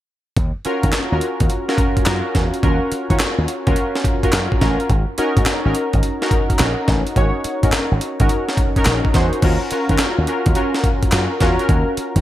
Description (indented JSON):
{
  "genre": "R&B, new jack swing",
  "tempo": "106 BPM",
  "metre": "4/4",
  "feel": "swing 66% on 16ths",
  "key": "Eb minor",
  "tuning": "A4 = 440 Hz",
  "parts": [
    { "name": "slap bass with an envelope filter", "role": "bass", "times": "0.4-12.2 s", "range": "Ab1 to Eb3", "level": "-20 LUFS", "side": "equal", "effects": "none" },
    { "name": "breakbeat sampler-style drum kit", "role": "drums", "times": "0.4-12.2 s", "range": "crash cymbal, handclaps, hi-hat, kick drum, snare drum", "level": "-18 LUFS", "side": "equal", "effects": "gated reverb" },
    { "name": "warm analog keys", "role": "accompaniment", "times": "0.7-12.2 s", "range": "Db4 to Db5", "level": "-20 LUFS", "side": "equal", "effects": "chorus" }
  ],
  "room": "light reverb, digital ambience",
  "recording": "bright 1980s-style digital production",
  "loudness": "-15 LUFS",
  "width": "side -13 dB against mid",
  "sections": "0.4-9.4 A section; 9.4-12.2 B section",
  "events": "none",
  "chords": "0.4 Ebm7; 4.9 Ab7sus4; 9.4 Ebm7",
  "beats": "| 0.37 0.93 1.50 2.07 | 2.63 3.20 3.76 4.33 | 4.90 5.46 6.03 6.59 | 7.16 7.73 8.29 8.86 | 9.42 9.99 10.56 11.12 | 11.69"
}